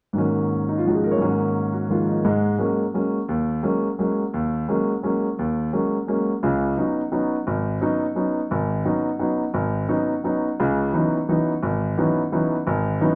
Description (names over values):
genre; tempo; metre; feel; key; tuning
jazz; 173 BPM; 3/4; swing 63% on 8ths; G# dorian; A4 = 440 Hz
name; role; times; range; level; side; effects
warm grand piano; solo; 0.1-13.2 s; G#1 to C#5; -23 LUFS; equal; none
room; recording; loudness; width
wet large studio reverb, RT60 1.0 s; none; -23 LUFS; mono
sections
0.2-2.2 A section; 2.2-10.6 B section; 10.6-13.2 C section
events
none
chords
0.2 G#9sus4; 6.4 C#9sus4; 10.6 C#m11